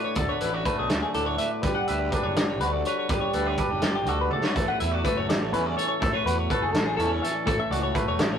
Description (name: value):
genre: math rock and midwest emo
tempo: 82 BPM (dotted quarters)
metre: 6/8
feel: straight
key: A major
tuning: A4 = 442 Hz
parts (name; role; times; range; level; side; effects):
- twangy electric guitar; accompaniment; 0.0-8.4 s; A2 to B4; -28 LUFS; right 2 dB; none
- twelve-string electric guitar; arpeggios; 0.0-8.4 s; G4 to F#5; -28 LUFS; left 4 dB; none
- fuzz picked electric bass; bass; 0.2-8.4 s; E1 to E2; -31 LUFS; equal; overdrive
- loose indie drum kit; drums; 0.2-8.3 s; hi-hat, kick drum, snare drum, toms; -28 LUFS; equal; none
room: moderate studio reverb, RT60 0.6 s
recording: rough rehearsal-room recording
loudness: -23 LUFS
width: side -8 dB against mid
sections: 0.0-8.4 A section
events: drum fill 4.3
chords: 0.0 D6; 1.6 Gmaj7; 4.6 A69; 7.5 F#m7